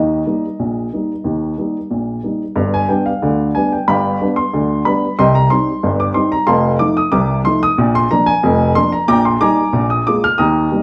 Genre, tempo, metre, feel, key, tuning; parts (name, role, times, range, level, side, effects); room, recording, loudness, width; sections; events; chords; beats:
ragtime piano; 92 BPM; 2/4; straight; Eb major; A4 = 442 Hz
dark upright piano; solo; 0.0-10.8 s; F1 to F6; -16 LUFS; equal
wet studio reverb, RT60 0.8 s; heard from further back in the room; -16 LUFS; mono
0.0-2.6 A section; 2.6-10.8 B section
0.0 Eb; 2.6 G7; 5.2 Cm; 6.5 F7; 7.8 Bb; 9.1 Eb/Bb; 9.7 Bb5
0.60 | 1.25 1.91 | 2.57 3.22 | 3.87 4.52 | 5.17 5.82 | 6.47 7.12 | 7.77 8.42 | 9.07 9.72 | 10.38